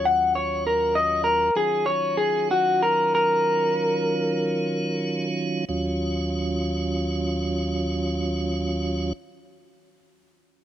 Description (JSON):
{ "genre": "blues", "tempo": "49-67 BPM (dotted quarters)", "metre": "12/8", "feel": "straight", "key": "Eb minor", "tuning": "A4 = 441 Hz", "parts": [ { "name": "electric guitar through a small old amp", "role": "melody", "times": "0.0-5.3 s", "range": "Gb4 to Gb5", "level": "-21 LUFS", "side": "left 1 dB", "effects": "none" }, { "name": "tonewheel organ", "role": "sustained chords", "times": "0.0-9.1 s", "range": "Eb2 to F4", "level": "-26 LUFS", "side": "right 2 dB", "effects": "slow rotary speaker" } ], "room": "little or no reverb", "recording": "dry, close 1970s-style studio recording", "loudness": "-21 LUFS", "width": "side -11 dB against mid", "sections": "0.0-5.7 A section; 5.7-10.5 B section", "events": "clean electric guitar solo 0.0-5.7; slowing down 0.3-5.7", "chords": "0.0 Ebm7" }